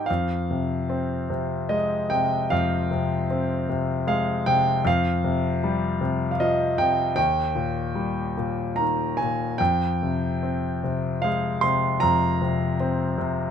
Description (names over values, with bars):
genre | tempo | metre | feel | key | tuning
classical, lyrical solo piano | 76 BPM | 3/4 | rubato | F minor | A4 = 440 Hz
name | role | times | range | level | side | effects
clear grand piano | solo | 0.0-13.5 s | Eb2 to C6 | -22 LUFS | left 1 dB | none
room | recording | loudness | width
little or no reverb | close, detailed microphones | -22 LUFS | side -8 dB against mid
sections
0.1-13.5 A section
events
none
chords
0.1 Fm; 4.8 Fsus2; 7.2 Eb; 9.6 Fm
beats
| 0.09 0.90 1.70 | 2.51 3.30 4.08 | 4.85 5.62 6.39 | 7.17 7.96 8.77 | 9.60 10.41 11.22 | 12.01 12.78